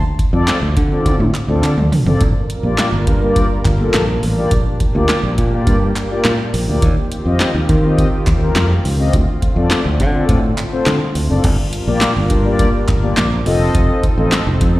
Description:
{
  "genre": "early-eighties boogie funk",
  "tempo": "104 BPM",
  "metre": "4/4",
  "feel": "straight",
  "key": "G minor",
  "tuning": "A4 = 440 Hz",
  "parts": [
    { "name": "mellow synth brass", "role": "accompaniment", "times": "0.0-14.8 s", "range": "Bb3 to Eb5", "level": "-20 LUFS", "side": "left 2 dB", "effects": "chorus, slapback echo" },
    { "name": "electro analog drum machine", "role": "drums", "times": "0.2-14.7 s", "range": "crash cymbal, handclaps, hi-hat, kick drum, snare drum, toms", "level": "-17 LUFS", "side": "equal", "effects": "none" },
    { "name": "fingered electric bass", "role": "bass", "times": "0.3-14.8 s", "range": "F1 to Eb3", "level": "-16 LUFS", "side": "equal", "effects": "none" },
    { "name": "group handclap", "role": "percussion", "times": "0.5-14.5 s", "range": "none", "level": "-29 LUFS", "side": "right 1 dB", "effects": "none" },
    { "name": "warm analog pad", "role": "sustained chords", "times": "2.2-14.8 s", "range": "D3 to Bb4", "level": "-24 LUFS", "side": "right 1 dB", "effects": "chorus" }
  ],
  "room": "digital ambience",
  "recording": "live gig heard through the venue's PA, recital hall reverb",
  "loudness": "-13 LUFS",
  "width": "side -17 dB against mid",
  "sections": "0.0-11.4 A section; 11.4-14.8 B section",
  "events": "drum fill 1.1-2.2",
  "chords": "0.0 Dm7; 2.2 Gm7; 4.5 Bb6; 6.8 Eb69; 9.1 Dm7; 11.4 Gm7; 13.5 F7",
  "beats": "0.48 1.06 1.63 | 2.21 2.79 3.37 3.94 | 4.52 5.10 5.67 6.25 | 6.83 7.40 7.98 8.56 | 9.13 9.71 10.29 10.87 | 11.44 12.02 12.60 13.17 | 13.75 14.33"
}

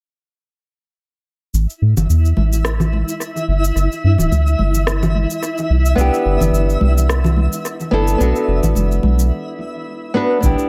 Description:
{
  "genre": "sunset chillout",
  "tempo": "108 BPM",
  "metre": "4/4",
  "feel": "swing 55% on 16ths",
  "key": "unclear",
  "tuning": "A4 = 437 Hz",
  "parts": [
    { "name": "round analog bass", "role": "bass", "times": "1.5-10.6 s", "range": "D1 to A2", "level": "-17 LUFS", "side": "equal", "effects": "none" },
    { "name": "electronic cabasa and rim click", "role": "drums", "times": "1.5-10.7 s", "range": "none", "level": "-28 LUFS", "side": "equal", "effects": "overdrive, analog delay" },
    { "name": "twinkling granular texture", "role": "texture", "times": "2.2-9.3 s", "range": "E4 to E5", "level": "-28 LUFS", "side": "equal", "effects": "built-in reverb" },
    { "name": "congas", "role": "percussion", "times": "2.0-9.2 s", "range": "none", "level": "-25 LUFS", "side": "equal", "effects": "analog delay" },
    { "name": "flamenco guitar", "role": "accompaniment", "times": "6.0-10.7 s", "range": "B3 to B4", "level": "-21 LUFS", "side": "equal", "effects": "vintage 12-bit sampler grit, analog delay" },
    { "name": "electronic kick drum", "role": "drums", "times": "10.4-10.5 s", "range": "none", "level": "-20 LUFS", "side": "equal", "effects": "none" }
  ],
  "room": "light reverb",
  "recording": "echo-heavy mix",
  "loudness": "-16 LUFS",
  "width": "mono",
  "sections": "1.5-10.4 A section",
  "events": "break 9.3-10.4",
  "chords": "1.5 A5; 3.5 G5; 5.7 Cmaj7; 8.2 Bm7",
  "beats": "| 1.54 2.09 2.65 3.20 | 3.76 4.32 4.87 5.43 | 5.98 6.54 7.09 7.65 | 8.20 8.76 9.32 9.87 | 10.43"
}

